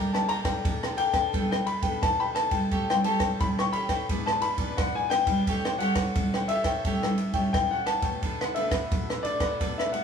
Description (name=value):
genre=samba and choro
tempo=87 BPM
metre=4/4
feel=straight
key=D major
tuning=A4 = 439 Hz
part: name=warm baby grand piano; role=melody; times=0.0-10.0 s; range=D5 to C#6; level=-28 LUFS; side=left 3 dB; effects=none
part: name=cavaquinho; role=accompaniment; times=0.0-10.0 s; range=D4 to A5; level=-33 LUFS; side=equal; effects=none
part: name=nylon-string guitar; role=accompaniment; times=0.0-10.0 s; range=G#2 to A4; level=-31 LUFS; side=equal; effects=none
part: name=compact cocktail drum kit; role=drums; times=0.1-10.0 s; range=kick drum, ride cymbal, rim click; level=-29 LUFS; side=right 1 dB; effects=none
room=moderate large studio reverb, RT60 1.4 s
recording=band playing live in one room, studio reverb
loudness=-24 LUFS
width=side -6 dB against mid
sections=0.0-10.0 A section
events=none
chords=0.0 Gmadd9; 1.3 Gadd9; 2.7 A7; 4.1 E7/G#; 5.5 A7; 8.2 D6